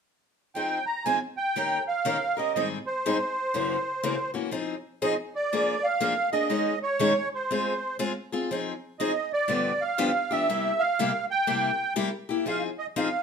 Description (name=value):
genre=jazz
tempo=121 BPM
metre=4/4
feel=swing 64% on 8ths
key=F minor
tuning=A4 = 441 Hz
part: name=musette accordion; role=melody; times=0.6-13.2 s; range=C5 to Bb5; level=-26 LUFS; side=right 3 dB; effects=none
part: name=picked steel-string acoustic guitar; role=accompaniment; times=0.6-13.1 s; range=Gb2 to Bb4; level=-28 LUFS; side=left 4 dB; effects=none
room=moderate studio reverb, RT60 0.8 s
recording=minimal, uncompressed stereo recording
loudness=-25 LUFS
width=side -6 dB against mid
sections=0.6-4.5 A section; 4.5-13.2 B section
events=none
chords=0.6 Fm7; 1.6 Eb7; 2.5 Abmaj7; 3.5 Gb7#11; 4.5 Fm7; 5.5 Bb7/F; 6.5 Eb7sus4; 7.5 Ab6; 8.5 Fm7; 9.5 G7; 10.5 C7; 12.5 Fm7